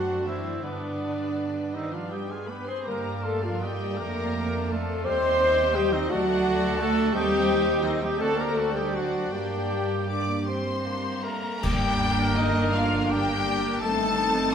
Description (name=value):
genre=classical, slow romantic movement for symphony orchestra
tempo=51-58 BPM (dotted quarters)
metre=6/8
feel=rubato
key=G minor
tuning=A4 = 442 Hz
part: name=warm studio violin section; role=melody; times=0.0-14.5 s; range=B4 to D6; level=-34 LUFS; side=left 4 dB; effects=none
part: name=mellow hollow concert flute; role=second line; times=0.0-14.5 s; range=D5 to D6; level=-36 LUFS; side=left 2 dB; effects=none
part: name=rich studio violin section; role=second line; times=0.0-14.5 s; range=Eb4 to C6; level=-37 LUFS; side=left 4 dB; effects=none
part: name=warm cor anglais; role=second line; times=0.0-14.5 s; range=B3 to D5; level=-35 LUFS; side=right 2 dB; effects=none
part: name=mellow bassoon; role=accompaniment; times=0.0-11.6 s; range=G3 to C4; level=-38 LUFS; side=right 2 dB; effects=none
part: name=rich studio viola section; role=accompaniment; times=0.0-14.5 s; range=D3 to A4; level=-34 LUFS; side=equal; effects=none
part: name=dark French horn section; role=sustained chords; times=0.0-14.5 s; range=Eb3 to C5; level=-28 LUFS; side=left 2 dB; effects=none
part: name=mellow trumpet section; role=stabs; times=0.0-14.5 s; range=D4 to C5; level=-32 LUFS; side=right 2 dB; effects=none
part: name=rich studio cello section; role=bass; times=0.0-14.5 s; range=G2 to C4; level=-33 LUFS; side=right 3 dB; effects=none
part: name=rich studio double bass section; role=bass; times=0.0-14.5 s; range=G1 to G2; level=-33 LUFS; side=right 3 dB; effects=none
part: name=cymbal swell, clash cymbals and concert bass drum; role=percussion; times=7.2-13.1 s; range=none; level=-33 LUFS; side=equal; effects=none
part: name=mellow trombone section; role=sustained chords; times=11.6-14.5 s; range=D3 to D4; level=-33 LUFS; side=right 4 dB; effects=none
room=wet scoring stage reverb, RT60 1.6 s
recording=none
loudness=-23 LUFS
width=side -7 dB against mid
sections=0.0-11.6 A section; 11.6-14.5 B section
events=band accent 11.6-12.4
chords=0.0 D7/F#; 0.6 G; 2.9 Gm; 4.0 Dm/F; 5.1 Cm/Eb; 6.1 D; 7.1 Cm/Eb; 8.2 D7; 9.3 Gm; 13.8 Am7b5/G